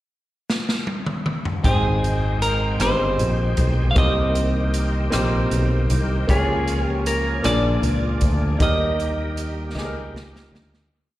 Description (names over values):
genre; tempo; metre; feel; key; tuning
slow gospel; 52 BPM (dotted quarters); 6/8; straight; Ab major; A4 = 440 Hz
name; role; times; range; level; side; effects
swinging big-band drum kit; drums; 0.5-10.9 s; hi-hat, kick drum, rim click, snare drum, toms; -24 LUFS; equal; none
clean electric guitar; melody; 1.6-10.5 s; Ab4 to F5; -25 LUFS; equal; slapback echo
clear grand piano; accompaniment; 1.6-11.0 s; Ab2 to G5; -25 LUFS; equal; slapback echo
bright tonewheel organ; sustained chords; 1.6-10.9 s; Eb3 to G5; -30 LUFS; right 2 dB; fast rotary speaker, overdrive, chorus vibrato
fingered electric bass; bass; 1.6-10.9 s; G1 to Eb2; -22 LUFS; equal; none
room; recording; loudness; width
light reverb; live gig heard through the venue's PA, recital hall reverb; -18 LUFS; side -15 dB against mid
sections
0.0-1.6 pickup bar; 1.6-10.9 verse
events
drum fill 0.5-1.6, 9.8-10.9; fade-out 8.6-10.9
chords
0.0 N.C.; 1.6 Abmaj7; 4.0 Cm7; 6.3 Db6; 7.4 Bb7; 8.6 Eb